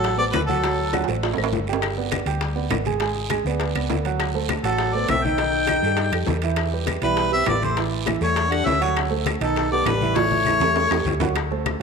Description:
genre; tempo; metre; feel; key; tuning
Afro-Cuban jazz; 202 BPM; 4/4; straight; D mixolydian; A4 = 440 Hz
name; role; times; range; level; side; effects
warm harmonica; melody; 0.0-1.0, 4.6-11.2 s; A4 to G5; -24 LUFS; left 1 dB; none
breathy trombone; second line; 0.0-1.0, 4.6-11.2 s; Eb3 to Eb4; -29 LUFS; left 11 dB; none
warm concert grand piano; accompaniment; 0.0-11.8 s; Eb3 to G#5; -26 LUFS; right 10 dB; none
hollow-body short-scale fingered electric bass; bass; 0.0-11.8 s; G1 to G2; -26 LUFS; left 1 dB; none
bongos; percussion; 0.0-11.8 s; none; -30 LUFS; left 12 dB; none
congas; percussion; 0.0-11.8 s; none; -33 LUFS; left 8 dB; none
guiro; percussion; 0.0-11.4 s; none; -37 LUFS; right 10 dB; none
timbales; percussion; 0.0-11.8 s; none; -30 LUFS; right 11 dB; none
claves; percussion; 0.3-11.8 s; none; -34 LUFS; left 14 dB; none
room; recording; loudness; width
moderate echo chamber reverb, RT60 2.5 s; 1960s-style stereo with parts hard left and right; -19 LUFS; side -5 dB against mid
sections
0.0-11.4 A section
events
drum fill 0.9-1.8, 10.2-11.4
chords
0.0 D7; 1.8 G; 3.0 G#dim; 4.2 D7; 5.4 Baug7; 6.6 Em; 7.8 A7; 9.0 D7; 9.6 Baug7; 10.2 A7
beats
0.05 0.34 | 0.64 0.94 1.23 1.53 | 1.83 2.12 2.42 2.72 | 3.01 3.31 3.61 3.90 | 4.20 4.50 4.79 5.09 | 5.39 5.69 5.98 6.28 | 6.58 6.88 7.17 7.47 | 7.77 8.07 8.37 8.67 | 8.96 9.26 9.56 9.86 | 10.16 10.46 10.76 11.06 | 11.36 11.66

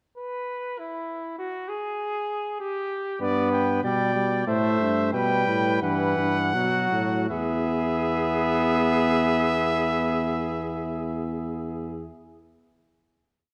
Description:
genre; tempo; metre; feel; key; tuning
classical, imitative canzona for brass ensemble; 77-99 BPM; 3/4; straight; unclear; A4 = 439 Hz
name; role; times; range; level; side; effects
clear flugelhorn; second line; 0.2-12.1 s; E4 to D5; -32 LUFS; equal; none
clear trumpet; melody; 3.2-12.1 s; D5 to G5; -29 LUFS; equal; none
bright trombone; accompaniment; 3.2-12.1 s; E3 to B3; -30 LUFS; equal; none
warm bass trombone; bass; 3.2-12.1 s; E2 to B2; -30 LUFS; equal; none
room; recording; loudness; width
moderate concert hall reverb, RT60 1.9 s; none; -25 LUFS; mono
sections
0.0-7.3 exposition; 7.3-12.0 final chord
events
slowing down 2.3-7.3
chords
0.0 N.C.; 3.2 G; 4.5 Am; 5.1 Em; 6.5 B5; 7.3 E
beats
0.17 0.78 | 1.39 2.00 2.60 | 3.21 3.83 4.47 | 5.13 5.82 6.54 | 7.29 8.07 8.85 | 9.63 10.40 11.18

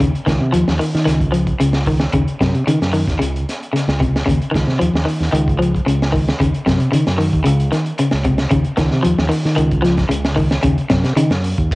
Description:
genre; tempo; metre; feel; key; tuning
afrobeat; 113 BPM; 4/4; straight; unclear; A4 = 440 Hz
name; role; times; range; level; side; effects
electric guitar at the edge of break-up; arpeggios; 0.0-11.4 s; C3 to F3; -17 LUFS; left 1 dB; cassette tape
fingered electric bass; bass; 0.0-11.7 s; Db2 to Eb3; -18 LUFS; equal; none
crunchy breakbeat drum kit; drums; 0.0-11.8 s; crash cymbal, hi-hat, kick drum, snare drum; -21 LUFS; equal; cassette tape
room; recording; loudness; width
light reverb, small room ambience; home recording on cassette; -14 LUFS; side -21 dB against mid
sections
0.0-11.8 A section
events
none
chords
0.0 Dbadd9; 2.1 Ebm7; 3.2 N.C.; 4.3 Dbadd9; 6.4 Ebm7; 7.5 Dbsus2; 8.5 Dbadd9; 10.6 Ebm7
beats
0.53 1.06 1.59 | 2.12 2.66 3.19 3.72 | 4.26 4.79 5.32 5.86 | 6.39 6.92 7.45 7.99 | 8.52 9.05 9.58 10.11 | 10.64 11.18 11.71

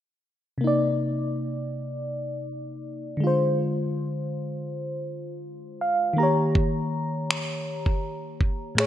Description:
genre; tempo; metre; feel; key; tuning
contemporary R&B; 81 BPM; 4/4; swing 54% on 16ths; C minor; A4 = 441 Hz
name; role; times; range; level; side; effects
mellow FM electric piano; accompaniment; 0.6-8.9 s; A2 to Bb5; -25 LUFS; equal; chorus
dusty soul sampler-style drum kit; drums; 6.6-8.9 s; finger snaps, kick drum; -25 LUFS; right 1 dB; gated reverb
room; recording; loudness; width
moderate lush hall reverb, RT60 2.0 s; bright 1980s-style digital production; -24 LUFS; side -11 dB against mid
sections
0.6-8.9 A section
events
FM electric piano fill 5.4-6.6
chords
0.6 Cm9; 3.2 Dm7b5; 6.2 Eb7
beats
| 0.63 1.37 2.11 2.85 | 3.59 4.33 5.07 5.81 | 6.55 7.29 8.03 8.77

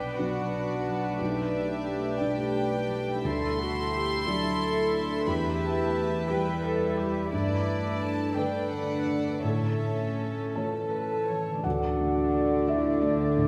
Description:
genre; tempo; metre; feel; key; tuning
cinematic, emotional film score for orchestra; 58 BPM (dotted quarters); 6/8; rubato; G major; A4 = 440 Hz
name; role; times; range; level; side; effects
warm symphonic violin section; melody; 0.0-13.5 s; D4 to C6; -39 LUFS; equal; none
warm symphonic violin section; second line; 0.0-13.5 s; D4 to E5; -38 LUFS; equal; none
felt-muted upright piano; accompaniment; 0.0-13.5 s; B1 to A5; -35 LUFS; equal; none
rich studio viola section; accompaniment; 0.0-13.5 s; G3 to A4; -38 LUFS; equal; none
concert harp; arpeggios; 0.0-13.5 s; G2 to B4; -36 LUFS; equal; none
warm symphonic cello section; bass; 0.0-13.5 s; D3 to B4; -35 LUFS; equal; none
mellow concert flute; second line; 10.6-13.5 s; D5 to A5; -38 LUFS; equal; none
dark French horn section; sustained chords; 10.6-13.5 s; D4 to A4; -33 LUFS; equal; none
clear clarinet; second line; 11.6-13.5 s; A4; -37 LUFS; equal; none
clear oboe; second line; 11.6-13.5 s; D5; -37 LUFS; equal; none
dark symphonic double bass section; bass; 11.6-13.5 s; D2; -36 LUFS; equal; none
room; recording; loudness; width
wet recital hall reverb, RT60 1.4 s; recorded in a church or concert hall; -28 LUFS; mono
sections
0.0-11.6 A section; 11.6-13.5 B section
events
none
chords
0.0 Bm; 1.2 Gadd9/B; 3.2 Dadd9; 5.3 Em; 7.3 Gadd9; 9.4 A; 11.6 D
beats
0.18 | 1.20 2.21 | 3.25 4.26 | 5.27 6.29 | 7.32 8.36 | 9.43 10.56 | 11.65 12.68

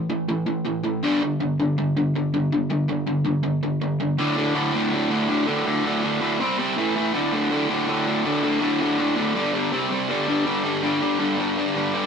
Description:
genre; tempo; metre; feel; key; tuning
punk; 162 BPM; 4/4; straight; unclear; A4 = 440 Hz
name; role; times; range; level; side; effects
raw garage guitar; solo; 0.0-12.1 s; D2 to C4; -20 LUFS; equal; overdrive
room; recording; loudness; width
light reverb; band playing live in one room, nothing above 11.0 kHz; -20 LUFS; side -6 dB against mid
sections
0.0-4.2 A section; 4.2-12.1 B section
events
none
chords
0.0 A5; 1.0 G5; 4.2 D5; 6.4 C5; 6.8 A5; 7.1 D5; 9.3 G5; 9.7 C5; 10.1 G5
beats
0.10 0.47 0.84 | 1.21 1.58 1.95 2.32 | 2.69 3.06 3.43 3.80 | 4.17 4.54 4.91 5.28 | 5.65 6.02 6.39 6.76 | 7.13 7.50 7.87 8.24 | 8.61 8.98 9.35 9.71 | 10.08 10.45 10.82 11.19 | 11.56 11.93

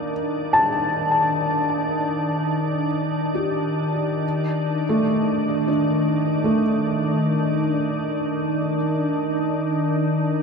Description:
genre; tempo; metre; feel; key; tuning
ambient; free time; none; none; unclear; A4 = 440 Hz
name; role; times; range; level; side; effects
felt-muted upright piano; arpeggios; 0.0-10.4 s; A3 to A5; -23 LUFS; equal; ping-pong delay
organ-like drone; drone; 0.0-10.4 s; Eb3 to D4; -22 LUFS; equal; ensemble chorus, built-in reverb
room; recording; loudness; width
wet huge ambient reverb, RT60 7.8 s; none; -20 LUFS; side -5 dB against mid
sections
0.0-10.4 A section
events
fade-in on synth drone 0.0-10.4; fade-out on felt piano 0.0-10.4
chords
0.0 Ebmaj7; 4.2 D5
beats
free time

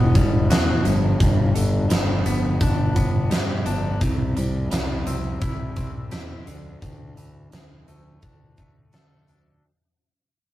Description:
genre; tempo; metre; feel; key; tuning
quiet-loud alternative rock; 85 BPM; 4/4; straight; unclear; A4 = 441 Hz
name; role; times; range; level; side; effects
twangy electric guitar; arpeggios; 0.0-9.6 s; G2 to A4; -28 LUFS; left 2 dB; none
fuzz fingered electric bass; bass; 0.0-9.6 s; E1 to D3; -24 LUFS; equal; overdrive
huge arena drum kit; drums; 0.2-9.4 s; hi-hat, kick drum, snare drum; -22 LUFS; equal; none
room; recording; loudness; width
moderate booth ambience, RT60 0.2 s; rough rehearsal-room recording; -19 LUFS; side -14 dB against mid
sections
0.0-9.6 A section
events
fade-out 0.0-9.6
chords
0.0 Emadd9; 0.9 G; 4.0 C; 6.5 Dsus2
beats
0.50 | 1.20 1.90 2.60 3.31 | 4.01 4.71 5.41 6.12 | 6.82 7.52 8.22 8.93

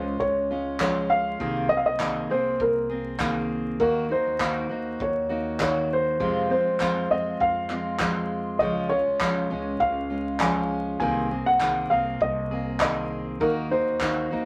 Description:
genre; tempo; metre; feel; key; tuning
acoustic pop; 100 BPM; 4/4; swing 55% on 16ths; Ab mixolydian; A4 = 441 Hz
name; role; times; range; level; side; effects
dark upright piano; melody; 0.0-14.5 s; Bb4 to Ab5; -27 LUFS; equal; none
fingerpicked steel-string acoustic guitar; accompaniment; 0.0-14.5 s; F2 to Ab4; -31 LUFS; equal; none
upright bass; bass; 0.0-14.5 s; C2 to F2; -38 LUFS; equal; none
unplugged drum kit; drums; 0.2-14.2 s; handclaps, kick drum; -33 LUFS; equal; none
group handclap; percussion; 0.8-14.2 s; none; -35 LUFS; equal; none
room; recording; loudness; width
wet small room reverb, RT60 0.5 s; vinyl crackle; -25 LUFS; mono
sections
0.0-14.5 A section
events
none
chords
0.0 Db; 1.4 Abadd9/C; 3.8 Ebm; 6.2 Fm; 8.6 Db; 11.0 Abadd9/C; 13.4 Ebm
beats
0.20 0.80 | 1.40 2.00 2.60 3.20 | 3.80 4.40 5.00 5.60 | 6.20 6.80 7.41 8.01 | 8.61 9.21 9.81 10.41 | 11.01 11.61 12.21 12.81 | 13.41 14.01

